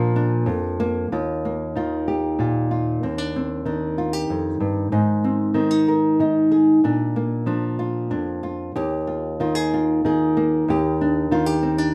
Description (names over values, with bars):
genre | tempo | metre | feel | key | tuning
folk | 94 BPM | 3/4 | straight | Eb major | A4 = 445 Hz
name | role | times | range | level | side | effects
nylon-string guitar | solo | 0.0-11.9 s | Eb2 to Bb4 | -22 LUFS | equal | none
room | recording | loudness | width
wet studio reverb, RT60 0.6 s | rough home demo mix | -22 LUFS | mono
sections
0.0-1.1 A section; 1.1-8.8 B section; 8.8-11.9 C section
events
none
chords
0.0 Bb; 1.1 Ebadd9; 3.0 Cmadd9/Eb; 4.9 Ab; 6.8 Bb; 8.8 Ebadd9; 10.7 Cmadd9/Eb